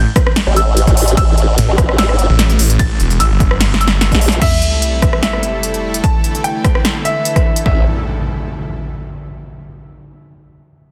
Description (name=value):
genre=heavy wobble dubstep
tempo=148 BPM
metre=4/4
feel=half-time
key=A minor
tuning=A4 = 438 Hz
part: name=bright baby grand piano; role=melody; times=0.0-7.8 s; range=E5 to A6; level=-24 LUFS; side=equal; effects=dub echo
part: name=snarling distorted saw bass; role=bass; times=0.0-4.1 s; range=E1 to A1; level=-15 LUFS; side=equal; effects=distortion, overdrive
part: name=big-room dance drum kit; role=drums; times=0.2-7.6 s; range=crash cymbal, hi-hat, ride cymbal, rim click, snare drum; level=-20 LUFS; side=equal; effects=overdrive
part: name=electronic kick drum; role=drums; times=0.2-7.7 s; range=none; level=-17 LUFS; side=equal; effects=overdrive
part: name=formant-sweep wobble bass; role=bass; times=0.5-4.4, 7.7-7.8 s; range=A1 to Bb1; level=-16 LUFS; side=equal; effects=chorus, overdrive
part: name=supersaw pad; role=sustained chords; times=4.4-7.8 s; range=C3 to A4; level=-26 LUFS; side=equal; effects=sidechain pumping
part: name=sub drop and impact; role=sound effects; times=4.4-9.3 s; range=none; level=-24 LUFS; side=equal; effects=none
room=little or no reverb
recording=dense, heavily limited modern master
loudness=-14 LUFS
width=mono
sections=0.0-4.4 A section; 4.4-7.7 B section; 7.7-9.3 C section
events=drop 0.0-4.4; drum fill 3.6-4.4; band accent 4.3; impact 4.4-6.0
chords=0.0 A5; 4.4 Am7; 6.0 Dsus2; 7.7 Am7